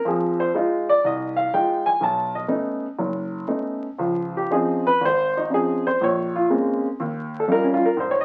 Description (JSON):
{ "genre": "solo jazz", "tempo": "122 BPM", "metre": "4/4", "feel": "swing 69% on 8ths, rubato", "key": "unclear", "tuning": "A4 = 439 Hz", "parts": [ { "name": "warm baby grand piano", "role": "solo", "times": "0.0-8.2 s", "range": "F#1 to A5", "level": "-22 LUFS", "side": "equal", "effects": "none" } ], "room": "moderate studio reverb, RT60 0.7 s", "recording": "very old 78 rpm record, vinyl crackle", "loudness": "-22 LUFS", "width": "mono", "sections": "0.0-8.2 A section", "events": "grand piano solo 0.0-8.2", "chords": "0.1 Fm7; 2.0 B9; 4.0 Dbmaj9; 6.0 Bbm9; 7.0 Eb9" }